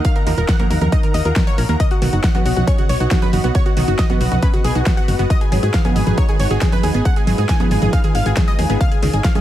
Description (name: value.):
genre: uplifting trance.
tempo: 137 BPM.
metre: 4/4.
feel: straight.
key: unclear.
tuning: A4 = 441 Hz.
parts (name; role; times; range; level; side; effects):
wide unison pluck; melody; 0.0-9.4 s; F#4 to Ab5; -24 LUFS; moving between left 5 dB and right 5 dB; auto-pan, sidechain pumping, digital delay.
supersaw stab; second line; 0.0-9.4 s; F#5 to Ab6; -30 LUFS; right 1 dB; sidechain pumping, dub echo.
analog string pad; sustained chords; 0.0-9.4 s; Ab3 to Gb5; -26 LUFS; left 1 dB; ensemble chorus, sidechain pumping.
wide unison pluck; arpeggios; 0.0-9.4 s; C#3 to Gb4; -26 LUFS; right 3 dB; sidechain pumping, dub echo.
big-room dance drum kit; drums; 0.0-9.4 s; congas, hi-hat, snare drum; -23 LUFS; right 1 dB; overdrive.
electronic kick drum; drums; 0.0-9.3 s; none; -16 LUFS; equal; overdrive.
downlifter; sound effects; 0.2-1.8 s; none; barely audible; none; none.
solid FM bass; bass; 0.3-9.2 s; Eb1 to Ab2; -18 LUFS; equal; sidechain pumping.
room: little or no reverb.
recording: none.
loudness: -14 LUFS.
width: side -13 dB against mid.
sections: 0.0-9.4 A section.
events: none.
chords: 0.0 Ebmadd9; 1.8 Badd9; 5.3 Abm7; 8.8 Dbadd9.